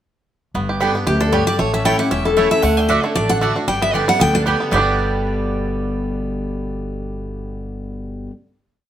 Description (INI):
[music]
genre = bluegrass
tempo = 230 BPM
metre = 4/4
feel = swing 55% on 8ths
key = G lydian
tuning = A4 = 440 Hz
[part]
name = picked steel-string acoustic guitar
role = accompaniment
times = 0.5-8.3 s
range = E2 to G4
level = -23 LUFS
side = left 1 dB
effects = none
[part]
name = upright bass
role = bass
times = 0.5-8.3 s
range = E1 to D2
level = -24 LUFS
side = equal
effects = none
[part]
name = bluegrass banjo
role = arpeggios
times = 0.6-8.3 s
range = G3 to G4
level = -23 LUFS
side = right 3 dB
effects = none
[part]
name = mandolin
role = stabs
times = 0.8-8.3 s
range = A3 to A5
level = -22 LUFS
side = right 5 dB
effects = none
[part]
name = picked steel-string acoustic guitar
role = melody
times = 1.1-8.3 s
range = G4 to G5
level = -19 LUFS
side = left 2 dB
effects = plate reverb, tape echo
[sound]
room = wet studio reverb, RT60 0.6 s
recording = none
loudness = -16 LUFS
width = side -10 dB against mid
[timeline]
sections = 0.5-4.7 A section; 4.7-6.8 final chord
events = none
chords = 0.5 G; 1.6 A; 2.6 D; 3.7 G